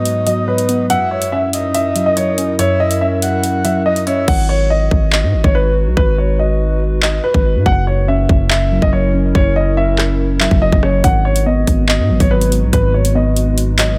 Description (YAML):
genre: hip hop, drill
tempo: 142 BPM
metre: 4/4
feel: half-time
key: G# minor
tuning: A4 = 441 Hz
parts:
  - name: warm baby grand piano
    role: melody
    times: 0.0-14.0 s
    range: B4 to F#5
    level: -20 LUFS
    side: equal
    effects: none
  - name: breathy flute-like synth lead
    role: second line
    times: 0.0-4.3 s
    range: D#5 to F#5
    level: -24 LUFS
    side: equal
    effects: chorus, tape echo
  - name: muted felt-like synth keys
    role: accompaniment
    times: 0.0-4.3, 7.7-14.0 s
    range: F#2 to C#4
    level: -21 LUFS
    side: equal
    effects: chorus
  - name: warbly tape-like pad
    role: sustained chords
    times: 0.0-14.0 s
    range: F#2 to B4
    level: -28 LUFS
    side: equal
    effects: chorus, built-in reverb
  - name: drill drum kit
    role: drums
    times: 0.1-13.9 s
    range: crash cymbal, handclaps, hi-hat, kick drum, rim click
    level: -19 LUFS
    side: equal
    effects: none
  - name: distorted 808-style bass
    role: bass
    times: 4.3-14.0 s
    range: F#1 to G#2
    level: -18 LUFS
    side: equal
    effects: distortion
room: light reverb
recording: none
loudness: -15 LUFS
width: mono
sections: 0.0-4.3 A section; 4.3-14.0 B section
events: hi-hats muted 4.3-11.0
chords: 0.0 G#m7; 0.9 F#7; 4.3 G#m7; 7.7 F#7; 11.0 G#m7